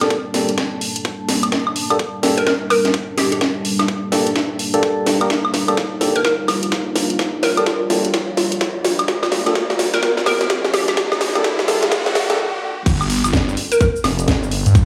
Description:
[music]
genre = bass house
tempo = 127 BPM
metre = 4/4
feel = swing 62% on 16ths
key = G minor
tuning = A4 = 440 Hz
[part]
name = hollow square pluck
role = melody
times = 0.0-13.9 s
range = G4 to Bb4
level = -23 LUFS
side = equal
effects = analog chorus, tape echo
[part]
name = deep dark ambient pad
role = sustained chords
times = 0.0-14.8 s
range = G3 to A5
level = -29 LUFS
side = equal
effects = chorus, built-in reverb, sidechain pumping
[part]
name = percussive organ stab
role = stabs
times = 0.0-12.4 s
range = Bb3 to Bb4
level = -24 LUFS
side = equal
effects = chorus, cassette tape, sidechain pumping, tape echo
[part]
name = house drum kit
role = drums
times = 0.0-14.8 s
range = crash cymbal, hi-hat, shaker, snare drum, woodblock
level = -21 LUFS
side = equal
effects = overdrive
[part]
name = electronic kick drum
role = drums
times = 0.1-14.8 s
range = none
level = -20 LUFS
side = equal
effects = overdrive, high-pass filter on kick
[part]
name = riser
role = sound effects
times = 7.3-12.4 s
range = none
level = -30 LUFS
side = equal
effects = none
[part]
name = phased detuned saw bass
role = bass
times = 12.9-14.8 s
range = F1 to G2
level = -20 LUFS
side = equal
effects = phaser, tube saturation, sidechain pumping
[sound]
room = wet plate reverb, RT60 1.0 s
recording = high-pass filter, studio reverb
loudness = -18 LUFS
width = mono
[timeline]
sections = 0.0-12.9 A section; 12.9-14.8 B section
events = build-up 0.0-12.9; drum fill 0.0-12.4; riser 7.3-12.4; stop 12.4-12.9; drop 12.9-14.8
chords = 0.0 Gmadd9

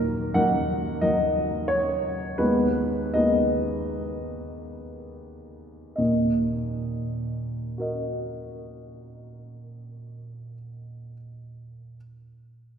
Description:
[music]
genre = classical, romantic character piece for solo piano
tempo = 53-92 BPM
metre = 4/4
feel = rubato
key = Eb minor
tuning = A4 = 440 Hz
[part]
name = warm baby grand piano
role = solo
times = 0.0-12.0 s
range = Eb2 to Gb5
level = -25 LUFS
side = equal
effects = none
[sound]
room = wet church reverb, RT60 2.8 s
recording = recorded in a church or concert hall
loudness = -23 LUFS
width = side -7 dB against mid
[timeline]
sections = 0.0-6.0 A section; 6.0-9.7 B section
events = slowing down 0.0-6.0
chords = 0.0 Ebm; 2.4 Abm/Eb; 6.0 Ebm

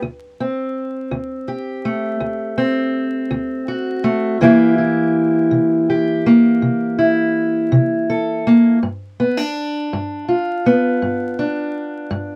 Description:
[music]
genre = blues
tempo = 54 BPM (dotted quarters)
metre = 12/8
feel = straight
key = unclear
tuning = A4 = 441 Hz
[part]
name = fingerpicked steel-string acoustic guitar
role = solo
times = 0.0-12.4 s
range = D2 to A4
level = -18 LUFS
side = equal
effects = none
[sound]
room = light reverb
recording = dry, close 1970s-style studio recording, vinyl crackle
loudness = -18 LUFS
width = mono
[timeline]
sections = 0.0-12.4 A section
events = none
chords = 0.0 D7; 4.4 C7; 8.8 G7

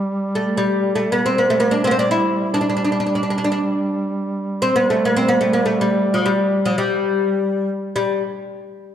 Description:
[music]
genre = Arabic maqam ensemble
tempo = free time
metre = none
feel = none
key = G maqam rast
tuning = A4 = 439 Hz
[part]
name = mellow duduk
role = drone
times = 0.0-8.0 s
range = G3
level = -23 LUFS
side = right 1 dB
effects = none
[part]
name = oud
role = melody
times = 0.4-8.2 s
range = F#3-50c to E4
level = -18 LUFS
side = equal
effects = none
[sound]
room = wet scoring stage reverb, RT60 1.8 s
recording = dark, warm production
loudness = -16 LUFS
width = side -9 dB against mid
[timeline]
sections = 0.0-8.0 A section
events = none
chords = none

